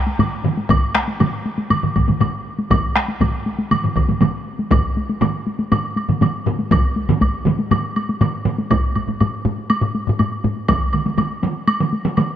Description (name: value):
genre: japanese traditional, taiko drum ensemble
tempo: 120 BPM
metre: 4/4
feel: straight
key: none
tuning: none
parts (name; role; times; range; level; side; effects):
- solo taiko drums; percussion; 0.1-12.4 s; none; -22 LUFS; left 2 dB; none
- taiko ensemble; percussion; 0.2-10.6 s; none; -22 LUFS; left 1 dB; none
- taiko ensemble; percussion; 0.2-12.3 s; none; -22 LUFS; right 3 dB; none
- woodblock; percussion; 0.2-12.3 s; none; -25 LUFS; equal; none
- taiko ensemble; percussion; 0.7-10.8 s; none; -21 LUFS; equal; none
room: light reverb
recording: none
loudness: -16 LUFS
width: side -10 dB against mid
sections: 0.0-8.7 A section; 8.7-12.4 B section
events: none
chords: none